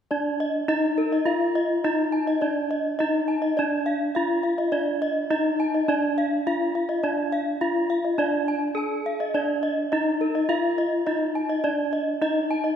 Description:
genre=gamelan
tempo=104 BPM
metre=4/4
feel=straight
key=unclear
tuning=A4 = 440 Hz
part: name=gamelan-type bronze metallophone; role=melody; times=0.1-12.8 s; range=D4 to A4-45c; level=-24 LUFS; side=equal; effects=none
part: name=gamelan-type bronze metallophone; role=arpeggios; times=0.1-12.8 s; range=Bb4-40c to A5-45c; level=-27 LUFS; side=equal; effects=none
room=wet scoring stage reverb, RT60 1.8 s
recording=recorded in a church or concert hall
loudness=-22 LUFS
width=side -8 dB against mid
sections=0.1-12.8 A section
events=none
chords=none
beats=| 0.11 0.69 1.26 1.84 | 2.42 2.99 3.57 4.15 | 4.72 5.30 5.88 6.46 | 7.03 7.61 8.19 8.76 | 9.34 9.92 10.49 11.07 | 11.65 12.22

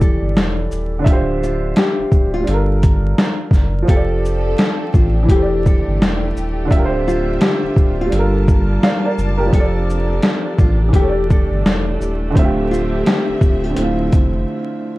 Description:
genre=lo-fi hip hop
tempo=85 BPM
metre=4/4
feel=swing 61% on 16ths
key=D minor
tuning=A4 = 440 Hz
part: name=nylon-string guitar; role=melody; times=0.0-14.0 s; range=F4 to A4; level=-24 LUFS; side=left 3 dB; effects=tape echo
part: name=clear upright piano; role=accompaniment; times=0.0-15.0 s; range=D3 to F5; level=-21 LUFS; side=right 2 dB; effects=none
part: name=saturated sub bass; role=bass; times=0.0-14.4 s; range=D1 to A1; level=-19 LUFS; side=equal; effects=none
part: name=boom bap sampler-style drum kit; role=drums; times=0.0-14.3 s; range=hi-hat, kick drum, shaker, snare drum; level=-14 LUFS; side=equal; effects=none
part: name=warm studio string section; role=sustained chords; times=3.9-15.0 s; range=D3 to A5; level=-26 LUFS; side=equal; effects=none
room=light reverb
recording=dark, warm production, vinyl crackle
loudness=-14 LUFS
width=side -18 dB against mid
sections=0.0-15.0 A section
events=break 14.5-15.0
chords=0.0 A7sus4/E; 1.1 Dm11; 2.5 Gm7; 3.9 F69; 5.3 A7sus4/E; 6.7 Dm11; 8.1 Gm7; 9.5 F69; 10.9 A7sus4/E; 12.4 Dm11; 13.8 Dm7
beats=0.35 | 1.06 1.76 2.47 3.18 | 3.88 4.59 5.29 6.00 | 6.71 7.41 8.12 8.82 | 9.53 10.23 10.94 11.65 | 12.35 13.06 13.77 14.47

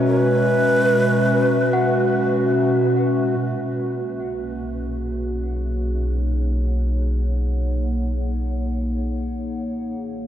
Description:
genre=ambient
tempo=free time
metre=none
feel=none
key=B major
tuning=A4 = 439 Hz
part: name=warbly tape-like pad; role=sustained chords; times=0.0-10.3 s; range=B2 to F#5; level=-21 LUFS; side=equal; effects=chorus, built-in reverb
part: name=worn celesta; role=arpeggios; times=0.0-3.8 s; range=F#5 to A#5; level=-33 LUFS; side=left 2 dB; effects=tape echo
part: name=breathy mellow shakuhachi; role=melody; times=0.1-2.5 s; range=B4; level=-22 LUFS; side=right 1 dB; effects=tape echo
part: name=deep rumbling drone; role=bass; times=4.5-10.3 s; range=B1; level=-23 LUFS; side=equal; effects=built-in reverb
room=wet huge ambient reverb, RT60 8.0 s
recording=dark, warm production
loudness=-19 LUFS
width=side -10 dB against mid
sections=0.0-3.4 A section; 3.4-10.3 B section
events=none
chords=0.0 Eadd9/B; 3.4 Bmaj13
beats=free time

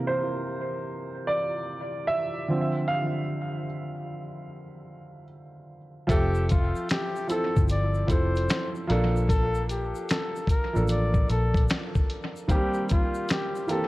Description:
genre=lo-fi hip hop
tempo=75 BPM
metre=4/4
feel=swing 66% on 16ths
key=F major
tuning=A4 = 441 Hz
part: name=warm upright piano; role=accompaniment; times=0.0-13.9 s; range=C3 to F5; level=-29 LUFS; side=right 1 dB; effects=low-pass filter, analog delay
part: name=breathy flugelhorn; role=melody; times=6.1-13.9 s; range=F4 to D5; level=-31 LUFS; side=left 2 dB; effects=analog delay
part: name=vintage muted fingered electric bass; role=bass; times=6.1-11.7 s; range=F1 to Bb1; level=-25 LUFS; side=equal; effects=none
part: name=dusty soul sampler-style drum kit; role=drums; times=6.1-13.9 s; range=finger snaps, hi-hat, kick drum, snare drum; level=-26 LUFS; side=equal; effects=analog delay
part: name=tube shaker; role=percussion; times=6.1-13.9 s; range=none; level=-52 LUFS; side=left 6 dB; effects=none
room=light reverb, studio ambience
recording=echo-heavy mix, cassette tape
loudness=-24 LUFS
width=side -18 dB against mid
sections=0.0-6.1 A section; 6.1-13.9 B section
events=upright piano solo 0.0-6.1; filter sweep on upright piano 0.0-6.1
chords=0.0 C7; 2.5 Dm7; 6.1 Fmaj7; 8.9 Bbmaj7; 12.5 C7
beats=0.49 1.29 2.09 | 2.89 3.69 4.49 5.29 | 6.09 6.89 7.69 8.49 | 9.29 10.09 10.89 11.69 | 12.49 13.29

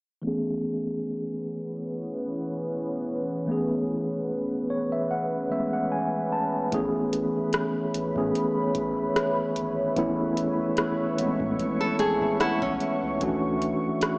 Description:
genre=contemporary R&B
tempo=74 BPM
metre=4/4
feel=swing 54% on 16ths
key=A major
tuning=A4 = 440 Hz
part: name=mellow tine electric piano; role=accompaniment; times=0.2-14.2 s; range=E3 to A5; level=-26 LUFS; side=equal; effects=medium stereo tremolo, low-pass filter
part: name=deep dark ambient pad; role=sustained chords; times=1.2-14.2 s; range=E3 to D6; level=-30 LUFS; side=equal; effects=chorus, built-in reverb, low-pass filter
part: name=round analog bass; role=bass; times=6.7-13.9 s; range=G#1 to A2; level=-42 LUFS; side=equal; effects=none
part: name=booming analog drum machine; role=drums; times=6.7-14.2 s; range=hi-hat, kick drum, rim click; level=-31 LUFS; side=equal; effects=none
part: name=nylon-string guitar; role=arpeggios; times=11.8-13.2 s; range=C#4 to A4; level=-27 LUFS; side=equal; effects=tape echo
room=moderate lush hall reverb, RT60 2.6 s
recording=dry, gritty hardware recording, cassette tape, small speaker sound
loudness=-24 LUFS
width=side -35 dB against mid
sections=0.2-6.7 A section; 6.7-14.2 B section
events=filter sweep 0.2-6.7; tine electric piano fill 4.3-6.7, 11.6-13.2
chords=0.2 Amaj9; 13.2 Dmaj9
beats=| 0.24 1.05 1.86 2.67 | 3.48 4.29 5.10 5.91 | 6.72 7.53 8.35 9.16 | 9.97 10.78 11.59 12.40 | 13.21 14.02

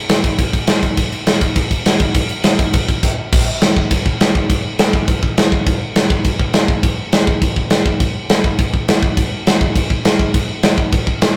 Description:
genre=punk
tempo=205 BPM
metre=4/4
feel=straight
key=none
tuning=none
part: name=big rock drum kit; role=drums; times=0.1-11.3 s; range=crash cymbal, kick drum, snare drum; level=-16 LUFS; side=equal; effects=none
room=light reverb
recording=rough rehearsal-room recording, tube saturation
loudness=-16 LUFS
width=mono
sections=0.0-3.3 A section; 3.3-11.4 B section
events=stop 3.0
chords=none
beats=0.10 0.39 0.68 | 0.98 1.27 1.56 1.86 | 2.15 2.45 2.74 3.03 | 3.33 3.62 3.91 4.20 | 4.50 4.79 5.08 5.38 | 5.67 5.96 6.25 6.54 | 6.84 7.13 7.42 7.71 | 8.01 8.30 8.59 8.88 | 9.17 9.47 9.76 10.05 | 10.34 10.63 10.93 11.22

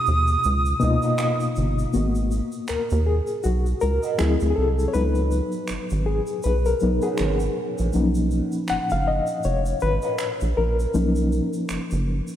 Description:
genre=R&B, neo-soul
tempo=80 BPM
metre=4/4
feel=swing 58% on 16ths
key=unclear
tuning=A4 = 440 Hz
part: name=silver concert flute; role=melody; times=0.0-1.6 s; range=D#6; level=-24 LUFS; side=right 3 dB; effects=diffuse ambient delay
part: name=reed electric piano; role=accompaniment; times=0.0-12.4 s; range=B2 to F#5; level=-23 LUFS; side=left 2 dB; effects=fast tremolo
part: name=rubbery square bass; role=bass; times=0.1-12.2 s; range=E#1 to D#2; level=-22 LUFS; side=right 1 dB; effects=none
part: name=tube shaker and finger snaps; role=percussion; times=0.1-12.4 s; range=none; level=-38 LUFS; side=right 2 dB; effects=none
part: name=electric guitar through a small old amp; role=second line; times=1.0-10.2 s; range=C#4 to D#5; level=-34 LUFS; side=right 7 dB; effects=wah, lush chorus, diffuse ambient delay
room=moderate lush hall reverb, RT60 2.8 s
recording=dreamy mix soaked in reverb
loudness=-20 LUFS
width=side -11 dB against mid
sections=0.0-1.9 A section; 1.9-12.4 B section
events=reed electric piano solo 1.9-12.4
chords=0.0 Bmaj9#11; 1.9 G#m7; 4.2 D9; 4.9 C#7sus4; 7.9 Bmaj9#11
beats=0.43 1.18 | 1.93 2.68 3.43 4.18 | 4.93 5.68 6.43 7.18 | 7.93 8.68 9.43 10.18 | 10.93 11.68

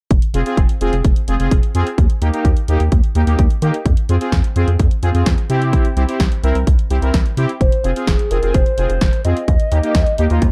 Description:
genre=synth-pop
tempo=128 BPM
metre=4/4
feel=straight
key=F minor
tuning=A4 = 440 Hz
part: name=rubbery square bass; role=bass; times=0.1-10.5 s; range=F1 to Eb3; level=-19 LUFS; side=equal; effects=none
part: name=house drum kit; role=drums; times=0.1-10.5 s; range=hi-hat, kick drum, snare drum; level=-18 LUFS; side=equal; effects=none
part: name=analog synth brass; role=accompaniment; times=0.3-10.4 s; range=Bb3 to Bb4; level=-24 LUFS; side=equal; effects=chorus
part: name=hollow clarinet-like synth lead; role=melody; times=7.6-10.5 s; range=Ab4 to Eb5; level=-23 LUFS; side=equal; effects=chorus, phaser, tape echo
room=little or no reverb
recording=dark, warm production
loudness=-16 LUFS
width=mono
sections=0.1-7.6 A section; 7.6-10.5 B section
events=none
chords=0.1 Fm; 2.0 Eb; 3.9 Fm; 5.5 C; 7.6 Fm; 9.5 Eb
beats=| 0.11 0.58 1.04 1.51 | 1.98 2.45 2.92 3.39 | 3.86 4.33 4.79 5.26 | 5.73 6.20 6.67 7.14 | 7.61 8.08 8.54 9.01 | 9.48 9.95 10.42

